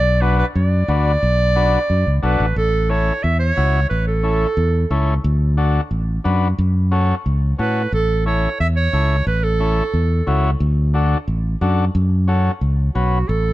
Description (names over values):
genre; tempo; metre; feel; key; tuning
latin, cumbia; 179 BPM; 4/4; straight; A major; A4 = 439 Hz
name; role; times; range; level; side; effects
bright clarinet; melody; 0.0-5.0, 7.6-10.4, 12.9-13.5 s; F#4 to E5; -21 LUFS; right 3 dB; none
fingered electric bass; bass; 0.0-13.5 s; A1 to A2; -17 LUFS; equal; none
overdriven combo organ; accompaniment; 0.2-13.2 s; C#4 to B4; -24 LUFS; left 3 dB; none
room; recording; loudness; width
light reverb; dark, warm production; -15 LUFS; side -16 dB against mid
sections
0.0-2.6 A section; 2.6-13.5 B section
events
none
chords
0.0 Bm; 2.6 A; 5.2 D; 6.6 F#m; 7.9 A; 10.6 D; 11.9 F#m